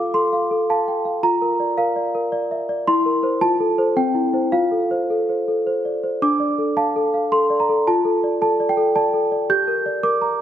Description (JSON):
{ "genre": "classical, lullaby for celesta", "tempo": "110 BPM", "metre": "3/4", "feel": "straight", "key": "F major, D minor from 6.2 s", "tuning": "A4 = 440 Hz", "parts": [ { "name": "celesta", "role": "solo", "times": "0.0-10.4 s", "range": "C4 to G6", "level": "-17 LUFS", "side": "equal", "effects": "none" } ], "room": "moderate concert hall reverb, RT60 2.2 s", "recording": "none", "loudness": "-17 LUFS", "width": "side -10 dB against mid", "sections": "0.0-6.2 A section; 6.2-10.4 B section", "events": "none", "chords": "0.0 F; 1.2 Bb/F; 2.9 C7/E; 3.4 F; 4.0 C; 4.5 F; 6.2 Dm; 7.9 Dm/F; 9.5 Gm" }